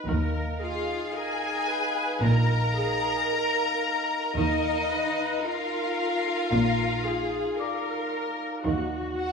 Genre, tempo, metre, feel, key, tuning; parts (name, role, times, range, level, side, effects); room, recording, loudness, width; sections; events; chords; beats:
cinematic, suspense film score; 56 BPM; 4/4; straight; Eb harmonic minor; A4 = 440 Hz
rich symphonic viola section; accompaniment; 0.0-9.3 s; F#4 to Cb5; -32 LUFS; left 1 dB
glass harmonica; sustained chords; 0.0-9.3 s; Eb4 to F#5; -35 LUFS; right 2 dB
large celesta; texture; 0.0-9.3 s; D5 to Ab6; -39 LUFS; left 7 dB
rich symphonic cello section; bass; 0.1-9.3 s; Bb2 to Eb3; -29 LUFS; equal
rich symphonic double bass section; bass; 0.1-9.3 s; Bb1 to Eb2; -29 LUFS; right 1 dB
rich symphonic violin section; melody; 0.6-9.3 s; Eb5 to Bb5; -30 LUFS; left 4 dB
clear studio violin section; second line; 0.6-9.3 s; Eb4 to Bb4; -30 LUFS; equal
wet scoring stage reverb, RT60 1.5 s; -24 LUFS; side -5 dB against mid
0.0-9.3 A section
0.1 Ebsus2; 8.7 B/D# (rootless)
| 0.08 1.15 2.22 3.29 | 4.37 5.44 6.51 7.58 | 8.65